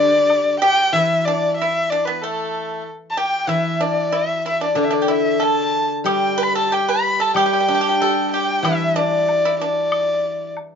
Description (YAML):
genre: chinese traditional, Chinese chamber ensemble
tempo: 94 BPM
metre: 2/4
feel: rubato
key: D zhi mode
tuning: A4 = 440 Hz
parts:
  - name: warm erhu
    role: melody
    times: 0.0-10.5 s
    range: A4 to B5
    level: -19 LUFS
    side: left 1 dB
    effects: none
  - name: breathy mellow xiao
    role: second line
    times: 0.0-0.6 s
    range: D4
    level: -24 LUFS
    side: left 5 dB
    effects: none
  - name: pipa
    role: second line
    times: 0.0-10.5 s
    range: A3 to B4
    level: -22 LUFS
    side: right 2 dB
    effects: none
  - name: rich cello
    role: second line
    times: 0.0-0.6 s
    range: D3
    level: -33 LUFS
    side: right 5 dB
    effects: none
  - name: steel-string zither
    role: accompaniment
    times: 0.0-10.6 s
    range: D3 to G4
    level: -23 LUFS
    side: left 2 dB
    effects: none
  - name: woodblock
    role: percussion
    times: 0.3-0.4, 6.1-10.7 s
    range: none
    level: -26 LUFS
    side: left 4 dB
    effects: none
room: wet small room reverb, RT60 0.5 s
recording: nothing above 7.6 kHz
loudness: -16 LUFS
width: side -7 dB against mid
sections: 0.9-10.8 A section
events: none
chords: none